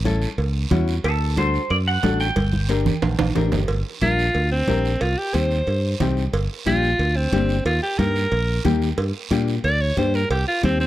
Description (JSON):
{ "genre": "latin, cumbia", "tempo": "181 BPM", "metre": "4/4", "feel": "straight", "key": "G minor", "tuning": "A4 = 441 Hz", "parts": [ { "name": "nylon-string guitar", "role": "accompaniment", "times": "0.0-10.9 s", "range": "Bb3 to Bb4", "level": "-25 LUFS", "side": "left 6 dB", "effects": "none" }, { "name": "fingered electric bass", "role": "bass", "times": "0.0-10.9 s", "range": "G1 to Bb2", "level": "-22 LUFS", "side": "equal", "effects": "none" }, { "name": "congas", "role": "percussion", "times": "0.1-10.8 s", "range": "none", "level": "-25 LUFS", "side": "right 2 dB", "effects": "none" }, { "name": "cowbell and timbales", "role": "percussion", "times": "0.1-10.8 s", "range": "none", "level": "-29 LUFS", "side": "right 4 dB", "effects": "none" }, { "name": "guiro", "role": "percussion", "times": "0.1-10.9 s", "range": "none", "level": "-36 LUFS", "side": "right 8 dB", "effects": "none" }, { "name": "semi-hollow electric guitar", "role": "second line", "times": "1.1-3.3 s", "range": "A4 to G5", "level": "-25 LUFS", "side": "right 1 dB", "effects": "wide subtle chorus" }, { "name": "breathy alto saxophone", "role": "melody", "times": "4.0-10.9 s", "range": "C4 to D5", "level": "-23 LUFS", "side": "right 1 dB", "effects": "none" } ], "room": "small room ambience", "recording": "dry, close 1970s-style studio recording", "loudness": "-18 LUFS", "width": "side -14 dB against mid", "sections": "0.0-3.7 A section; 3.7-10.9 B section", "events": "clean electric guitar solo 0.0-3.7; drum fill 2.4-3.7; alto saxophone solo 3.7-10.9", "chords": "0.0 A; 1.0 D; 2.4 Gm; 5.0 Cm; 6.3 Gm; 7.7 Eb; 9.0 Gm; 10.3 Cm" }